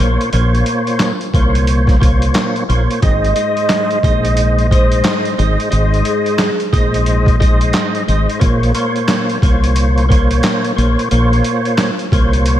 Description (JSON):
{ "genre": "hip hop, boom-bap hip-hop", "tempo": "89 BPM", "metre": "4/4", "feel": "swing 60% on 16ths", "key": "unclear", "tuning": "A4 = 440 Hz", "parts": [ { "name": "percussive tonewheel organ", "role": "accompaniment", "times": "0.0-12.6 s", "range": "Ab2 to Eb5", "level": "-17 LUFS", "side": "equal", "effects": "chorus vibrato, slow rotary speaker, high-pass filter, low-pass filter" }, { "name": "deep dub fingered electric bass", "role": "bass", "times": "0.0-12.6 s", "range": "Ab1 to C2", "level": "-14 LUFS", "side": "equal", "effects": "none" }, { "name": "boom bap sampler-style drum kit", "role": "drums", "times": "0.0-12.6 s", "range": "handclaps, hi-hat, kick drum, snare drum", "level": "-16 LUFS", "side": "equal", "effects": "vintage 12-bit sampler grit" }, { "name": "vibraphone with soft mallets", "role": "melody", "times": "3.0-6.6 s", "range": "Ab4 to Eb5", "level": "-20 LUFS", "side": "right 2 dB", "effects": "high-pass filter, low-pass filter, diffuse ambient delay" } ], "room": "moderate plate reverb, RT60 2.2 s", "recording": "dreamy mix soaked in reverb, vinyl crackle", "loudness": "-12 LUFS", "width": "side -12 dB against mid", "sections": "0.0-12.6 A section", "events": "none", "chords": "0.0 Bbmadd9; 3.0 Ab; 8.4 Bbmadd9" }